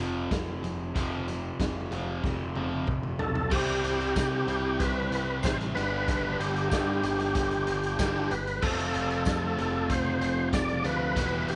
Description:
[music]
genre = classic rock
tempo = 94 BPM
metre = 4/4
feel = straight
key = unclear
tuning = A4 = 441 Hz
[part]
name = crunchy overdriven guitar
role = riff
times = 0.0-11.6 s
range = E2 to C4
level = -39 LUFS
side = equal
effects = none
[part]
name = distorted electric guitar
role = riff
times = 0.0-11.6 s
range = E2 to C4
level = -37 LUFS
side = equal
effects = distortion
[part]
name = growling picked electric bass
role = bass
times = 0.0-11.6 s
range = E1 to C3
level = -37 LUFS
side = equal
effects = overdrive
[part]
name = raw garage drum kit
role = drums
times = 0.3-11.6 s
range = crash cymbal, hi-hat, kick drum, snare drum, toms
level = -35 LUFS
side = equal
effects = none
[part]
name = overdriven tonewheel organ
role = melody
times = 3.2-11.6 s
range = G4 to D5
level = -32 LUFS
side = equal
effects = slow rotary speaker, chorus vibrato, slapback echo
[part]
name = string machine, full ensemble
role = sustained chords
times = 3.5-11.6 s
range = G3 to E5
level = -44 LUFS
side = equal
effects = none
[part]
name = overdriven electric guitar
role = riff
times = 3.5-11.6 s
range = G2 to F4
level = -38 LUFS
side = equal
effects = none
[part]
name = tambourine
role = percussion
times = 4.2-10.7 s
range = none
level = -48 LUFS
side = equal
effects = none
[sound]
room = light reverb, small room ambience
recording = nothing above 10.9 kHz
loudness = -29 LUFS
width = mono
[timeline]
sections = 0.0-3.5 A section; 3.5-11.6 B section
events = drum fill 2.2-3.5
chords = 0.0 F5; 3.5 C; 5.8 G; 8.6 F

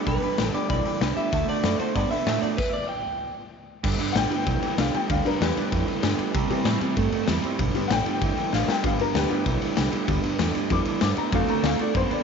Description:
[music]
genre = rockabilly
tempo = 192 BPM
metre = 4/4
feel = straight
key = G major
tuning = A4 = 441 Hz
[part]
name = picked steel-string acoustic guitar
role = accompaniment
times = 0.0-12.2 s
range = G2 to G4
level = -34 LUFS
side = left 8 dB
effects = none
[part]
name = electric guitar through a small old amp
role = riff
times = 0.0-12.2 s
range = G2 to B3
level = -27 LUFS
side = right 12 dB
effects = none
[part]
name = electric guitar through a small old amp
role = melody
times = 0.1-3.3 s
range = B4 to G5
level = -29 LUFS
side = equal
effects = tape echo
[part]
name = tack piano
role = accompaniment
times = 0.1-12.2 s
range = D3 to D6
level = -29 LUFS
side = left 8 dB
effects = none
[part]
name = fretless electric bass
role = bass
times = 0.1-12.1 s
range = G1 to C3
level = -28 LUFS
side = right 1 dB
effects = none
[part]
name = raw garage drum kit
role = drums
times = 0.1-12.2 s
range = crash cymbal, hi-hat, kick drum, ride cymbal, snare drum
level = -27 LUFS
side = left 3 dB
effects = none
[sound]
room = moderate echo chamber reverb, RT60 1.9 s, small room ambience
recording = 1960s-style stereo with parts hard left and right, nothing above 7.5 kHz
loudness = -22 LUFS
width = side -6 dB against mid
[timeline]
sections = 0.0-3.8 A section; 3.8-12.2 B section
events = stop 2.6-3.8; honky-tonk piano solo 3.8-12.2; drum fill 8.5-8.8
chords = 0.0 G; 1.3 D7; 2.6 N.C.; 3.8 G; 6.3 C; 7.6 G; 11.3 D7

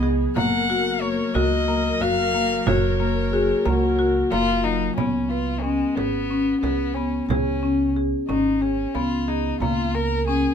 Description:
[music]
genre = contemporary instrumental, chamber music in an uneven meter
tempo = 182 BPM (eighths)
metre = 7/8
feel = straight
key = Db mixolydian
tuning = A4 = 437 Hz
[part]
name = rich violin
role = melody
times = 0.0-10.5 s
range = Ab3 to Gb5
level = -27 LUFS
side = left 3 dB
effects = none
[part]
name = warm studio string section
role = sustained chords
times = 0.0-4.9 s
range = Eb3 to Bb4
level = -30 LUFS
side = right 2 dB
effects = none
[part]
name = marimba with medium hard mallets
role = arpeggios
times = 0.0-10.5 s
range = Gb3 to Cb5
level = -22 LUFS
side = left 3 dB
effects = none
[part]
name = upright bass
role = bass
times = 0.0-10.4 s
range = Gb1 to Db2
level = -27 LUFS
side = right 3 dB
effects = none
[part]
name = frame drum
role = percussion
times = 0.0-9.9 s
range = none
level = -28 LUFS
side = right 6 dB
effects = none
[part]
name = dark French horn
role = second line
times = 3.3-5.0 s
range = F4 to Ab4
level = -23 LUFS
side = left 2 dB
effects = none
[sound]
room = light reverb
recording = minimal, uncompressed stereo recording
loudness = -19 LUFS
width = side -7 dB against mid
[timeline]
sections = 0.0-5.0 A section; 5.0-10.5 B section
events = none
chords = 0.4 Gbmaj7; 5.0 Db5; 9.6 Gb/Db (rootless)

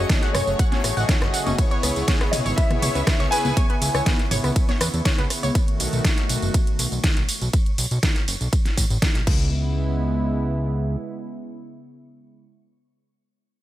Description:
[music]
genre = progressive house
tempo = 121 BPM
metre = 4/4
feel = straight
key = C# minor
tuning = A4 = 440 Hz
[part]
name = warm baby grand piano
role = melody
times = 0.0-4.0 s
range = C#5 to G#5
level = -29 LUFS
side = left 1 dB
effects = dub echo
[part]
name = warm symphonic violin section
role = second line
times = 0.0-4.0 s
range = C#5 to G#5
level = -36 LUFS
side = equal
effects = none
[part]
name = warm analog pad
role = sustained chords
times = 0.0-12.4 s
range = C#3 to F#4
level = -30 LUFS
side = right 1 dB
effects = chorus, sidechain pumping
[part]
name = soft supersaw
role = stabs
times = 0.0-3.5 s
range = A3 to D#5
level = -30 LUFS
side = left 3 dB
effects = phaser, cassette tape, sidechain pumping, dub echo
[part]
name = fat analog bass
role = bass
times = 0.0-11.0 s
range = F#1 to F#2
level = -24 LUFS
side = equal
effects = tube saturation, sidechain pumping
[part]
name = twinkling granular texture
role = texture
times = 0.0-7.5 s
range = C#5 to C#6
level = -38 LUFS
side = equal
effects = built-in reverb, sidechain pumping
[part]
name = electronic kick drum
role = drums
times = 0.1-9.4 s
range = none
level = -21 LUFS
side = equal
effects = overdrive
[part]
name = pop drum kit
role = drums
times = 0.1-9.4 s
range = crash cymbal, hi-hat, ride cymbal, snare drum, tambourine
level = -26 LUFS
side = right 1 dB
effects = overdrive
[part]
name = deep house drum kit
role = percussion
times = 0.1-5.5 s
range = congas, rim click, toms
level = -30 LUFS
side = left 3 dB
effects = sidechain pumping on snare, sidechain pumping on perc, sidechain pumping on toms
[part]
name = analog pluck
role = arpeggios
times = 0.2-5.5 s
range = B3 to F#6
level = -30 LUFS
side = right 1 dB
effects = chorus, sidechain pumping, dub echo
[sound]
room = little or no reverb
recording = none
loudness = -19 LUFS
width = side -14 dB against mid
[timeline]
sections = 0.0-9.5 A section; 9.5-13.5 B section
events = drop 0.0-9.5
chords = 0.0 F#madd9; 1.6 C#m7; 5.6 B7; 9.3 C#m7

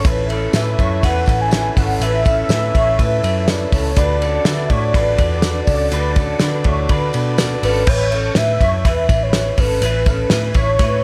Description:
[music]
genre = jangly indie pop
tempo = 123 BPM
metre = 4/4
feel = straight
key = A major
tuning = A4 = 440 Hz
[part]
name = warm velvety synth lead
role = melody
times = 0.0-11.0 s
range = B4 to G#5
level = -23 LUFS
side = equal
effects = chorus
[part]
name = combo organ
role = accompaniment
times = 0.0-7.8 s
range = C#4 to D5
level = -27 LUFS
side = equal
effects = none
[part]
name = electric guitar through a small old amp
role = arpeggios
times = 0.0-11.0 s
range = C#4 to C#5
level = -26 LUFS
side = equal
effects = ensemble chorus, analog delay
[part]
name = vintage muted picked electric bass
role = bass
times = 0.0-11.0 s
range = G#1 to D3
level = -23 LUFS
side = equal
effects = none
[part]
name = loose indie drum kit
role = drums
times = 0.0-10.9 s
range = crash cymbal, hi-hat, kick drum, ride cymbal, snare drum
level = -20 LUFS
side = equal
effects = none
[part]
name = tambourine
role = percussion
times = 0.0-10.9 s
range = none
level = -39 LUFS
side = equal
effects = none
[sound]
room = small room ambience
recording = none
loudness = -16 LUFS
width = mono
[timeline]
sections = 0.0-7.9 A section; 7.9-11.0 A section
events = none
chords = 0.1 Aadd9; 4.0 D; 7.9 Aadd9

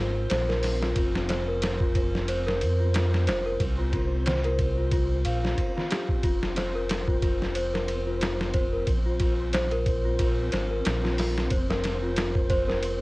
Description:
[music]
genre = trip hop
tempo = 91 BPM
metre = 4/4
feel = swing 55% on 16ths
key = unclear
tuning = A4 = 441 Hz
[part]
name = celesta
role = arpeggios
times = 0.0-13.0 s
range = F4 to F5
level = -29 LUFS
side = left 1 dB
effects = cassette tape, tape echo
[part]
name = round analog bass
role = bass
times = 0.0-13.0 s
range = F1 to F2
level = -28 LUFS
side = equal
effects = none
[part]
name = flickering grainy texture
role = texture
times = 0.0-13.0 s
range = C4 to C5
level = -37 LUFS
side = right 1 dB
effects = built-in reverb, cassette tape
[part]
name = boom bap sampler-style drum kit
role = drums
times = 0.3-13.0 s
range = hi-hat, kick drum, ride cymbal, snare drum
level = -28 LUFS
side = equal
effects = cassette tape
[sound]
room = light reverb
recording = home recording on cassette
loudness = -24 LUFS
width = side -21 dB against mid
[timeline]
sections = 0.0-13.0 A section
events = none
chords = 0.0 Bb5; 1.0 F5; 3.6 C5; 6.2 F5; 8.9 Bb5; 11.5 F5

